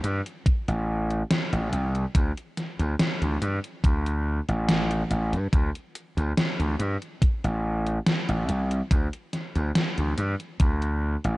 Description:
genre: vaporwave.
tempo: 71 BPM.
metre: 4/4.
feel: straight.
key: unclear.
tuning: A4 = 440 Hz.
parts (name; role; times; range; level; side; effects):
gritty slap bass; bass; 0.0-11.4 s; A1 to G2; -25 LUFS; equal; overdrive.
gated 80s digital drum machine; drums; 0.0-11.4 s; hi-hat, snare drum; -27 LUFS; equal; gated reverb, gated reverb snare, overdrive.
electronic kick drum; drums; 0.5-10.8 s; none; -21 LUFS; equal; overdrive.
room: little or no reverb.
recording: cassette tape.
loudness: -23 LUFS.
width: side -20 dB against mid.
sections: 0.0-11.4 A section.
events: none.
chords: none.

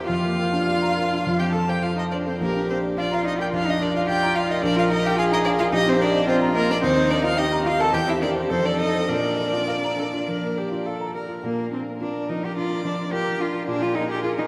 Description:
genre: quick classical-period movement for piano quartet.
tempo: 100-110 BPM.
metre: 4/4.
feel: rubato.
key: Bb major.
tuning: A4 = 439 Hz.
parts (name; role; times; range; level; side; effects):
rich cello; second line; 0.0-14.4 s; Bb3 to A4; -29 LUFS; equal; none.
rich viola; accompaniment; 0.0-14.5 s; D4 to D5; -31 LUFS; equal; none.
warm grand piano; accompaniment; 0.0-14.5 s; Bb1 to Bb5; -28 LUFS; equal; none.
rich violin; melody; 0.1-14.5 s; Ab4 to A5; -28 LUFS; equal; none.
room: wet cathedral reverb, RT60 5.7 s.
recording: in a vast, echoing space.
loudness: -23 LUFS.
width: mono.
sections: 0.0-11.4 A section; 11.4-14.5 A section.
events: none.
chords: 0.1 Bb/F; 1.2 F; 2.4 Bb; 4.6 Bb5; 5.7 Eb/Bb; 6.8 Eb; 7.9 C7/E; 8.5 F7; 9.1 Bb; 13.7 Bb5.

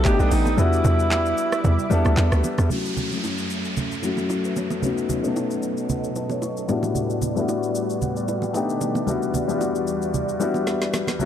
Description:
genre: amapiano.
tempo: 113 BPM.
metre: 4/4.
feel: swing 55% on 16ths.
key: E dorian.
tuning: A4 = 442 Hz.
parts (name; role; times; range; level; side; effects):
breathy alto saxophone; melody; 0.0-2.2 s; D4 to G4; -25 LUFS; right 1 dB; digital delay.
warm grand piano; accompaniment; 0.0-11.3 s; A2 to C#6; -24 LUFS; left 4 dB; low-pass filter.
lush unison pad; sustained chords; 0.0-11.3 s; E2 to D#6; -29 LUFS; right 3 dB; chorus, sidechain pumping, low-pass filter.
hollow log drum bass; bass; 0.0-2.7 s; A1 to E2; -19 LUFS; right 1 dB; none.
smooth R&B drum kit; drums; 0.0-11.3 s; handclaps, hi-hat, kick drum, rim click, shaker, snare drum; -29 LUFS; equal; none.
bongos and congas; percussion; 0.0-11.3 s; none; -30 LUFS; right 4 dB; none.
downlifter; sound effects; 2.7-7.0 s; none; -34 LUFS; right 2 dB; none.
room: light reverb.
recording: dark, warm production.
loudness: -20 LUFS.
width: side -9 dB against mid.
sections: 0.0-2.7 A section; 2.7-11.3 B section.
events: drop 0.0-2.7; kick muted 0.6-2.7; filter sweep 2.7-11.3; grand piano fill 5.4-7.0, 10.4-11.2; drum fill 10.7-11.2.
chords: 0.1 B7alt; 0.6 Em7; 2.7 F#m7; 4.8 B9; 6.7 A13sus4; 8.5 B7alt; 9.1 Em7.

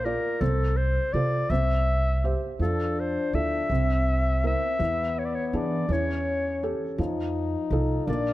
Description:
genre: acoustic folk-pop ballad.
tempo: 55 BPM (dotted quarters).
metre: 6/8.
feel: straight.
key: F major.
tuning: A4 = 440 Hz.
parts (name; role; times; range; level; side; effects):
breathy clarinet; melody; 0.0-8.3 s; A4 to E5; -28 LUFS; left 2 dB; none.
felt-muted upright piano; accompaniment; 0.0-8.3 s; C3 to E5; -31 LUFS; right 1 dB; none.
upright bass; bass; 0.0-8.3 s; Bb1 to E3; -26 LUFS; equal; none.
warm French horn; second line; 2.6-8.3 s; B3 to Eb4; -31 LUFS; left 3 dB; none.
room: light reverb.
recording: close, detailed microphones.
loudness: -23 LUFS.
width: side -16 dB against mid.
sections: 0.0-2.6 A section; 2.6-8.3 B section.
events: none.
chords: 0.4 F/C; 1.5 C; 2.6 Fmaj7; 3.7 C7; 4.8 E7; 5.9 A7/E; 7.0 F7.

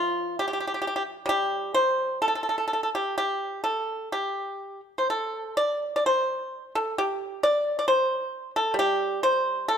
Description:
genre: chinese traditional, Chinese solo plucked strings.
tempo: 62-67 BPM.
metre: 2/4.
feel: rubato.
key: G shang mode.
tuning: A4 = 441 Hz.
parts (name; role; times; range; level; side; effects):
pipa; solo; 0.0-9.8 s; F3 to D5; -24 LUFS; equal; none.
room: light reverb.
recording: none.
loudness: -24 LUFS.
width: side -8 dB against mid.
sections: 0.0-9.8 A section.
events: none.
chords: none.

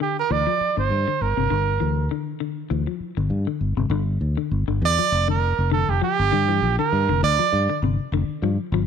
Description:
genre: afrobeat.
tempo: 100 BPM.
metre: 4/4.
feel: swing 55% on 16ths.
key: G dorian.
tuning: A4 = 445 Hz.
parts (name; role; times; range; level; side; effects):
warm trumpet; melody; 0.0-7.8 s; G4 to D5; -22 LUFS; right 9 dB; none.
semi-hollow electric guitar; arpeggios; 0.0-8.9 s; C3 to F3; -27 LUFS; left 11 dB; none.
fingered electric bass; bass; 0.3-8.9 s; F1 to G2; -22 LUFS; left 1 dB; none.
room: light reverb, small room ambience.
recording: 1960s-style stereo with parts hard left and right.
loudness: -20 LUFS.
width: side -7 dB against mid.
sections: 0.0-3.9 A section; 3.9-8.9 B section.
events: none.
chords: 0.0 Gm; 3.9 G7(no3).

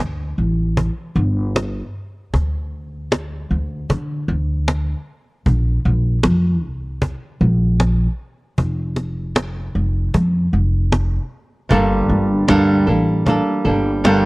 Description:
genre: acoustic pop.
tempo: 77 BPM.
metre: 4/4.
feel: swing 55% on 16ths.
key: G minor.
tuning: A4 = 442 Hz.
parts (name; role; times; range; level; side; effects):
upright bass; bass; 0.0-14.3 s; F1 to D3; -18 LUFS; equal; none.
cajon; drums; 0.8-14.2 s; none; -19 LUFS; equal; none.
flamenco guitar; accompaniment; 11.7-14.3 s; G2 to A4; -14 LUFS; right 1 dB; none.
room: little or no reverb.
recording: worn, warbling old tape, cassette tape, warbly pitch drift, lossy compression artefacts.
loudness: -16 LUFS.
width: side -23 dB against mid.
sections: 0.0-14.3 A section.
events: none.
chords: 0.0 Gsus2; 2.3 N.C.; 5.5 Bbsus2; 8.6 N.C.; 11.7 Gmadd9.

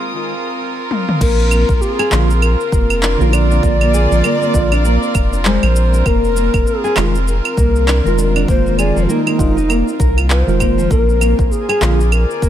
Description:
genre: organic downtempo.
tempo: 99 BPM.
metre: 4/4.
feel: swing 58% on 16ths.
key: Bb mixolydian.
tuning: A4 = 439 Hz.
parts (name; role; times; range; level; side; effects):
rich chamber string section; sustained chords; 0.0-12.5 s; C4 to Eb6; -23 LUFS; right 2 dB; sidechain pumping.
organic electronic drum kit; drums; 0.9-12.5 s; claves, crash cymbal, handclaps, shaker, toms; -21 LUFS; right 1 dB; overdrive, low-pass filter on perc, low-pass filter on toms, low-pass filter on cymbals, low-pass filter on snare.
mellow low Native American-style wooden flute; melody; 1.2-12.5 s; Eb4 to D5; -20 LUFS; left 1 dB; ping-pong delay.
nylon-string guitar; arpeggios; 1.2-12.5 s; F3 to Bb4; -20 LUFS; left 1 dB; ping-pong delay.
round analog bass; bass; 1.2-12.5 s; F1 to C2; -15 LUFS; equal; sidechain pumping.
electronic kick drum; drums; 1.2-12.5 s; none; -17 LUFS; equal; none.
tine electric piano; accompaniment; 2.1-12.0 s; D3 to F4; -21 LUFS; right 2 dB; medium stereo tremolo, sidechain pumping, ping-pong delay.
twinkling granular texture; texture; 11.3-12.5 s; Ab4 to Ab5; -35 LUFS; left 2 dB; none.
room: digital ambience.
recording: none.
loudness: -12 LUFS.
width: side -11 dB against mid.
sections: 0.0-1.2 A section; 1.2-12.5 B section.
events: break 0.0-1.2; filter sweep on tine electric piano 0.0-1.2; drum fill 0.9-1.2.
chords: 0.0 F7(no3); 1.2 Bb; 6.1 Fm7; 10.9 Bb.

